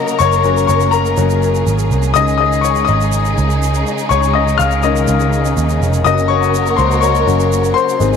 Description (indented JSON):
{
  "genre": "piano-driven pop",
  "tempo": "123 BPM",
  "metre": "4/4",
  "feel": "straight",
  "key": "unclear",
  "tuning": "A4 = 440 Hz",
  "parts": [
    { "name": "warm grand piano", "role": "accompaniment", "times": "0.0-8.2 s", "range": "Eb3 to F6", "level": "-14 LUFS", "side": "left 9 dB", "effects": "none" },
    { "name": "warm studio string section", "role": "sustained chords", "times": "0.0-8.2 s", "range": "C3 to Bb4", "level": "-20 LUFS", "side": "right 2 dB", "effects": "none" },
    { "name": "egg shaker", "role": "percussion", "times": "0.1-8.2 s", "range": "none", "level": "-30 LUFS", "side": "right 16 dB", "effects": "none" },
    { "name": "vintage muted picked electric bass", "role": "bass", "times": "0.2-8.2 s", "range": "F1 to Eb2", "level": "-16 LUFS", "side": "right 2 dB", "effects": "none" }
  ],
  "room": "light reverb",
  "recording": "1960s-style stereo with parts hard left and right",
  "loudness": "-12 LUFS",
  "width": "side -6 dB against mid",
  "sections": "0.0-8.2 A section",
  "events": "grand piano solo 0.0-8.2",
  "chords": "0.0 Gb; 2.2 Dbsus2; 6.1 Gb"
}